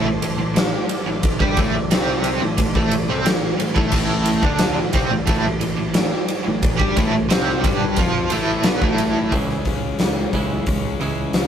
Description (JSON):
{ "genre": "quiet-loud alternative rock", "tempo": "89 BPM", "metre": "4/4", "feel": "straight", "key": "A minor", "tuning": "A4 = 440 Hz", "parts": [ { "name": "phased string machine", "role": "sustained chords", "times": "0.0-9.3 s", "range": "A3 to D5", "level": "-33 LUFS", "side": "right 1 dB", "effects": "none" }, { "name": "crunchy overdriven guitar", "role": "riff", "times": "0.0-11.5 s", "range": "G2 to G4", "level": "-25 LUFS", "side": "left 3 dB", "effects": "none" }, { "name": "crunchy overdriven guitar", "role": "riff", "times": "0.0-9.3 s", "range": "G2 to G4", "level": "-23 LUFS", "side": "right 3 dB", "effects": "tremolo" }, { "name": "growling picked electric bass", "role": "bass", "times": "0.0-11.5 s", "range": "G1 to G2", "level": "-27 LUFS", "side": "equal", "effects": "overdrive" }, { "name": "huge arena drum kit", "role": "drums", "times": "0.2-11.5 s", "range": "crash cymbal, hi-hat, kick drum, ride cymbal, snare drum", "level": "-20 LUFS", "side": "equal", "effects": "none" }, { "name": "twelve-string electric guitar", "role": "arpeggios", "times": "9.3-11.5 s", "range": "C#3 to G#3", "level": "-28 LUFS", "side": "right 4 dB", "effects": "none" } ], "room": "light reverb", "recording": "rough rehearsal-room recording", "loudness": "-17 LUFS", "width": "side -8 dB against mid", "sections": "0.0-9.3 A section; 9.3-11.5 B section", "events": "none", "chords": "0.0 Am; 9.3 C#m", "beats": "0.57 | 1.24 1.92 2.59 3.26 | 3.94 4.61 5.28 5.96 | 6.63 7.30 7.97 8.65 | 9.32 10.00 10.67 11.35" }